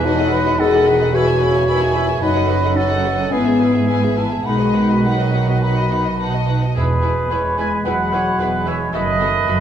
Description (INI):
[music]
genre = classical, dramatic, fast romantic movement for symphony orchestra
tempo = 101-112 BPM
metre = 4/4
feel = rubato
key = E major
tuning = A4 = 442 Hz
[part]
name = warm studio violin section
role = melody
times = 0.0-9.6 s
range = A4 to B5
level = -29 LUFS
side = left 4 dB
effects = none
[part]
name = clear oboe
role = second line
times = 0.0-9.6 s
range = G#4 to C#5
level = -27 LUFS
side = right 2 dB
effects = none
[part]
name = mellow hollow concert flute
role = second line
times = 0.0-9.6 s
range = F#5 to B5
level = -24 LUFS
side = equal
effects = none
[part]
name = warm symphonic violin section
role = second line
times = 0.0-9.6 s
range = F#4 to E5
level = -29 LUFS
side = left 5 dB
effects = none
[part]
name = clear symphonic viola section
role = accompaniment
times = 0.0-9.5 s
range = B3 to A4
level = -29 LUFS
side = right 3 dB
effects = none
[part]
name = warm bassoon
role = accompaniment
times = 0.0-9.6 s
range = C#3 to A3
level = -26 LUFS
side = right 4 dB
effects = none
[part]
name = mellow French horn section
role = sustained chords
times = 0.0-9.6 s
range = B2 to G#4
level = -19 LUFS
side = left 3 dB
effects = none
[part]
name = dark symphonic cello section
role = bass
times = 0.0-9.6 s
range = E2 to B2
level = -24 LUFS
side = right 3 dB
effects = none
[part]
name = warm symphonic double bass section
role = bass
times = 0.0-9.6 s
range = E1 to B1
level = -23 LUFS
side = right 3 dB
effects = none
[part]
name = clear trumpet section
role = stabs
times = 6.8-9.6 s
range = B4 to G#5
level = -21 LUFS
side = right 2 dB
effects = none
[part]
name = timpani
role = percussion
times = 6.8-7.6 s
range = E2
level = -26 LUFS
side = right 1 dB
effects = none
[sound]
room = wet recital hall reverb, RT60 1.5 s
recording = minimal, uncompressed stereo recording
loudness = -15 LUFS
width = side -9 dB against mid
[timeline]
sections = 0.0-6.8 A section; 6.8-9.6 B section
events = none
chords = 0.1 B7/E; 1.1 E; 2.2 B7/F#; 3.3 E/G#; 4.5 B; 6.8 E; 8.9 B7/F#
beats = | 0.05 0.60 1.14 1.68 | 2.22 2.77 3.32 3.88 | 4.46 5.05 5.63 6.21 | 6.77 7.32 7.87 8.41 | 8.95 9.49